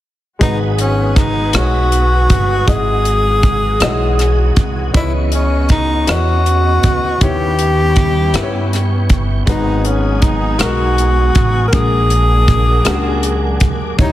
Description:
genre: slow gospel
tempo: 53 BPM (dotted quarters)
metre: 6/8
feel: straight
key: G# minor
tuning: A4 = 440 Hz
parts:
  - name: warm tenor saxophone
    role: melody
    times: 0.4-14.1 s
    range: C#4 to A#4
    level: -17 LUFS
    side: left 1 dB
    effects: none
  - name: clear baby grand piano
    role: accompaniment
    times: 0.4-14.1 s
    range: G#2 to D#5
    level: -22 LUFS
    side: left 4 dB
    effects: none
  - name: muted studio string section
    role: sustained chords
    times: 0.4-14.1 s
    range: C#3 to G4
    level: -28 LUFS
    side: right 1 dB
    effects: none
  - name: tonewheel organ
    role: sustained chords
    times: 0.4-14.1 s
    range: B3 to D#6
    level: -25 LUFS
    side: right 2 dB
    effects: fast rotary speaker, chorus vibrato
  - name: upright bass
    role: bass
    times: 0.4-14.1 s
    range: G1 to G2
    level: -16 LUFS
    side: equal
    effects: none
  - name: tight funk drum kit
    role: drums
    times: 0.4-14.1 s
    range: hi-hat, kick drum, rim click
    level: -16 LUFS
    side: equal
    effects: soft clipping on kick, soft clipping on snare
room: light reverb, studio ambience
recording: dense, heavily limited modern master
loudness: -12 LUFS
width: side -14 dB against mid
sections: 0.4-14.1 A section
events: none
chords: 0.4 G#m7; 2.7 Emaj9/G#; 4.9 C#m9; 7.2 D#7b9b13; 9.5 G#m7; 11.7 A#7alt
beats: | 0.41 1.54 | 2.68 3.81 | 4.95 6.08 | 7.21 8.34 | 9.47 10.60 | 11.73 12.86 | 13.98

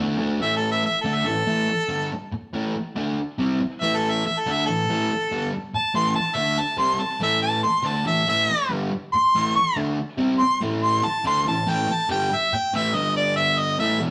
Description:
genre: rock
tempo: 142 BPM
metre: 4/4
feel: straight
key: unclear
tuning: A4 = 440 Hz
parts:
  - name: fuzz guitar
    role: riff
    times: 0.0-14.1 s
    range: E2 to D4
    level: -27 LUFS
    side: equal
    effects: distortion
  - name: clear harmonica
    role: melody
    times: 0.4-14.0 s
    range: A4 to C#6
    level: -24 LUFS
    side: equal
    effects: overdrive
room: wet stone room reverb, RT60 1.0 s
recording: rough rehearsal-room recording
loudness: -23 LUFS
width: mono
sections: 0.4-14.0 A section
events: harmonica solo 0.4-14.0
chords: 0.0 D5; 0.4 A5; 12.9 G5; 13.8 A5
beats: | 0.41 0.83 1.26 1.69 | 2.11 2.54 2.97 3.39 | 3.82 4.25 4.67 5.09 | 5.52 5.94 6.37 6.79 | 7.22 7.64 8.06 8.49 | 8.91 9.34 9.76 10.18 | 10.61 11.03 11.46 11.88 | 12.30 12.72 13.15 13.57 | 13.99

